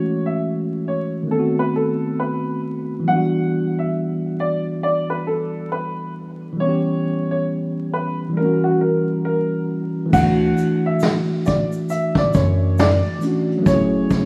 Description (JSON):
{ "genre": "lo-fi hip hop", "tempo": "68 BPM", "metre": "4/4", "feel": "swing 60% on 16ths", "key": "D major", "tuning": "A4 = 440 Hz", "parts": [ { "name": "warm upright piano", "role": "melody", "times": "0.0-14.3 s", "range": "F#4 to F#5", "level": "-26 LUFS", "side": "equal", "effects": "low-pass filter" }, { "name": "tine electric piano", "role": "accompaniment", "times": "0.0-14.3 s", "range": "D#3 to G#4", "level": "-23 LUFS", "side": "equal", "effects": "low-pass filter" }, { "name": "round analog bass", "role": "bass", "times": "10.1-14.1 s", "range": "F#1 to F#2", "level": "-23 LUFS", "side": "equal", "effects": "none" }, { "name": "vintage brush drum kit", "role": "drums", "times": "10.1-14.3 s", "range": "crash cymbal, hi-hat, kick drum, snare drum", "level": "-22 LUFS", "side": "equal", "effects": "none" }, { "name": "egg shaker", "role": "percussion", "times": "10.1-14.3 s", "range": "none", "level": "-50 LUFS", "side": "equal", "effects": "none" } ], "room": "light reverb, small room ambience", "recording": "rough home demo mix, vinyl crackle, studio ambience", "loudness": "-20 LUFS", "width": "mono", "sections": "0.0-10.1 A section; 10.1-14.3 B section", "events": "none", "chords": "0.0 F#m7; 1.3 B7b9; 3.1 Em7; 6.6 C#m7b5; 8.4 F#7b9; 10.1 Dmaj7; 13.7 F#m7" }